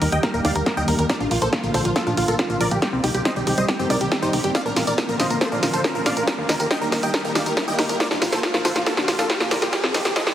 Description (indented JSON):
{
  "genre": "uplifting trance",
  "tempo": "139 BPM",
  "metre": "4/4",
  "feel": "straight",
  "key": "Bb major",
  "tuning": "A4 = 440 Hz",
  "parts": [
    { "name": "supersaw stab", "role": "melody", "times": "0.0-10.3 s", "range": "Eb4 to G5", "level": "-24 LUFS", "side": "equal", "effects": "sidechain pumping, digital delay" },
    { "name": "lush unison pad", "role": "sustained chords", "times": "0.0-10.3 s", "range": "D3 to G4", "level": "-28 LUFS", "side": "right 1 dB", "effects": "chorus, sidechain pumping" },
    { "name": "tight sequenced synth", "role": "arpeggios", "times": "0.0-10.3 s", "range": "G3 to Bb4", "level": "-29 LUFS", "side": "left 1 dB", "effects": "chorus, sidechain pumping, digital delay" },
    { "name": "tight sequencer bass", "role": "bass", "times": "0.0-10.3 s", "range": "Eb1 to Bb2", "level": "-27 LUFS", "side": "equal", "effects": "sidechain pumping" },
    { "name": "punchy analog drum machine", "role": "drums", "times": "0.0-10.3 s", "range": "hi-hat, snare drum, tambourine", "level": "-24 LUFS", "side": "equal", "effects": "sidechain pumping on hats, sidechain pumping on perc" },
    { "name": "riser and noise sweep", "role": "sound effects", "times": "2.5-10.3 s", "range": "none", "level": "-32 LUFS", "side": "right 1 dB", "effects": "none" },
    { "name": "electronic kick drum", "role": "drums", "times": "0.2-10.2 s", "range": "none", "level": "-27 LUFS", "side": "equal", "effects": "overdrive, high-pass filter on kick" }
  ],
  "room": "moderate huge ambient reverb, RT60 4.2 s",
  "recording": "heavily compressed radio sound, high-pass filter",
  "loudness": "-19 LUFS",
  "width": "side -11 dB against mid",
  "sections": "0.0-10.3 A section",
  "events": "build-up 0.0-10.3; drum fill 0.0-10.3; filter sweep 0.0-10.3; noise sweep 9.7-10.3",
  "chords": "0.0 Eb; 1.1 Bb; 2.8 Cm; 4.5 Bb; 6.3 Eb; 8.0 Bb; 9.7 Cm"
}